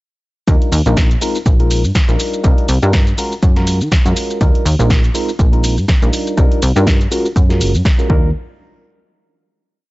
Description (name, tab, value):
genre	filtered disco house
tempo	122 BPM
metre	4/4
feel	swing 56% on 16ths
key	Eb major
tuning	A4 = 439 Hz
part	bright reed electric piano	accompaniment	0.5-8.3 s	G3 to Bb4	-20 LUFS	equal	phaser, vintage 12-bit sampler grit, sidechain pumping
part	plucky analog bass	bass	0.5-8.3 s	Gb1 to Eb3	-15 LUFS	equal	sidechain pumping
part	electronic kick drum	drums	0.5-8.2 s	none	-13 LUFS	equal	none
part	punchy analog drum machine	drums	0.5-8.1 s	hi-hat, shaker, snare drum	-22 LUFS	equal	sidechain pumping on hats, sidechain pumping on perc
room	little or no reverb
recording	dry, gritty hardware recording, nothing above 7.8 kHz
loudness	-12 LUFS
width	side -20 dB against mid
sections	0.5-8.3 drop; 8.3-9.9 final hit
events	drop 0.5-8.3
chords	0.5 Ebmaj9; 1.2 Bb9sus4; 2.2 Cm11; 3.2 Gbmaj9; 4.4 Ebmaj9; 5.1 Bb9sus4; 6.1 Cm11; 7.1 Gbmaj9; 8.1 Ebmaj9; 8.3 N.C.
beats	| 0.48 0.97 1.46 1.95 | 2.44 2.94 3.43 3.92 | 4.41 4.90 5.39 5.89 | 6.38 6.87 7.36 7.85